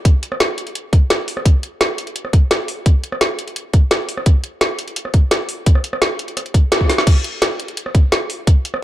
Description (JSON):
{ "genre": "drum and bass", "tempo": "171 BPM", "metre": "4/4", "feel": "straight", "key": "none", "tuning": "none", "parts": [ { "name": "drum and bass drum kit", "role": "drums", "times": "0.1-8.8 s", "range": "crash cymbal, hi-hat, rim click, snare drum", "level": "-18 LUFS", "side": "equal", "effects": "none" }, { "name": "electronic kick drum", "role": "drums", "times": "0.1-8.5 s", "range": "none", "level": "-11 LUFS", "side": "equal", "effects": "none" } ], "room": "light reverb", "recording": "dark, warm production", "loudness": "-14 LUFS", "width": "side -14 dB against mid", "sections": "0.0-7.1 A section; 7.1-8.8 A section", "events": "drop 0.0-7.1, 7.1-8.8; band accent 6.7; drum fill 6.9", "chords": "none", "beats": "| 0.05 0.40 0.75 1.10 | 1.46 1.81 2.16 2.51 | 2.86 3.21 3.56 3.91 | 4.26 4.61 4.96 5.32 | 5.67 6.02 6.37 6.72 | 7.07 7.42 7.77 8.12 | 8.47" }